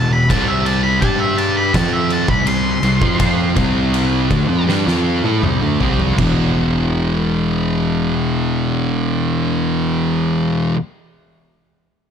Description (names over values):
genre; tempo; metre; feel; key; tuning
stoner and doom metal; 80 BPM; 4/4; straight; E phrygian; A4 = 438 Hz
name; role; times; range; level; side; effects
octave-fuzz lead guitar; melody; 0.0-4.6 s; E5 to C6; -21 LUFS; equal; distortion, ping-pong delay
thick fuzz guitar; riff; 0.0-10.8 s; E2 to G4; -20 LUFS; left 10 dB; distortion
thick fuzz guitar; riff; 0.0-10.8 s; E2 to G4; -20 LUFS; right 9 dB; distortion
fuzz fingered electric bass; bass; 0.0-10.7 s; E1 to A2; -22 LUFS; equal; overdrive
oversized low-tuned drum kit; drums; 0.3-6.4 s; crash cymbal, kick drum, ride cymbal, snare drum, toms; -21 LUFS; equal; none
room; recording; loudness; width
studio ambience; none; -14 LUFS; side -8 dB against mid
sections
0.0-6.2 A section; 6.2-9.2 B section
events
lead electric guitar solo 0.0-6.2; slowing down 0.3-6.2; drum fill 4.7-6.2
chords
0.3 C5; 1.0 G5; 1.7 C5; 6.2 E5